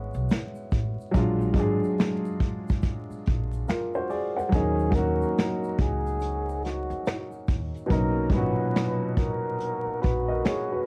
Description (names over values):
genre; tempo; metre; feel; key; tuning
lo-fi hip hop; 71 BPM; 4/4; swing 63% on 16ths; unclear; A4 = 441 Hz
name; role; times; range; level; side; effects
warm upright piano; accompaniment; 0.0-10.9 s; A#2 to F#5; -30 LUFS; equal; low-pass filter
upright bass; bass; 0.0-10.4 s; G#1 to E2; -32 LUFS; equal; none
vintage brush drum kit; drums; 0.1-10.7 s; finger snaps, hi-hat, kick drum, snare drum; -29 LUFS; equal; cassette tape
egg shaker; percussion; 0.1-7.9 s; none; -68 LUFS; equal; none
breathy flugelhorn; melody; 4.5-10.9 s; F#4 to B4; -34 LUFS; equal; low-pass filter, cassette tape
room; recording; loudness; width
light reverb; home recording on cassette, vinyl crackle; -27 LUFS; mono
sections
0.0-10.9 A section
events
none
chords
0.0 Amaj9; 1.1 A#7b13; 4.5 D#m7; 7.9 Bmaj9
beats
0.30 | 1.15 1.99 2.84 3.68 | 4.53 5.37 6.22 7.06 | 7.91 8.75 9.60 10.44